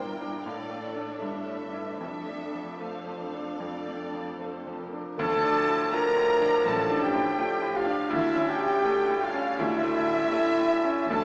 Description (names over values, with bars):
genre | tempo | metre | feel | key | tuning
classical, romantic movement for piano and orchestra | 74-83 BPM | 4/4 | rubato | D minor | A4 = 445 Hz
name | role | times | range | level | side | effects
bright grand piano | melody | 0.0-11.2 s | D2 to A4 | -34 LUFS | equal | none
rich studio violin section | melody | 0.0-11.2 s | C#5 to Bb5 | -43 LUFS | equal | none
warm studio violin section | second line | 0.0-11.2 s | A4 to Bb5 | -37 LUFS | equal | none
dark studio viola section | accompaniment | 0.0-10.9 s | C#4 to Bb4 | -43 LUFS | equal | none
warm French horn section | sustained chords | 0.0-11.2 s | A3 to Bb4 | -31 LUFS | equal | none
rich studio double bass section | bass | 0.0-11.2 s | F1 to D2 | -47 LUFS | equal | none
warm studio cello section | bass | 0.0-11.2 s | D2 to A2 | -46 LUFS | equal | none
hollow large flute ensemble | second line | 5.2-11.2 s | E5 to Bb5 | -37 LUFS | equal | none
warm oboe | second line | 5.2-11.2 s | E4 to Bb4 | -36 LUFS | equal | none
clear trombone section | sustained chords | 5.2-11.2 s | F3 to D4 | -40 LUFS | equal | none
dark tuba | bass | 5.2-11.2 s | A1 to D2 | -42 LUFS | equal | none
timpani | percussion | 5.2-6.3, 11.1-11.2 s | D3 | -45 LUFS | equal | none
room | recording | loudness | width
wet scoring stage reverb, RT60 2.0 s | heard from further back in the room, small speaker sound | -28 LUFS | mono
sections
0.0-5.2 A section; 5.2-11.2 B section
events
none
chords
0.5 Dm/A; 1.2 A7/G; 2.0 Dm/F; 5.2 Dm; 8.1 A7/D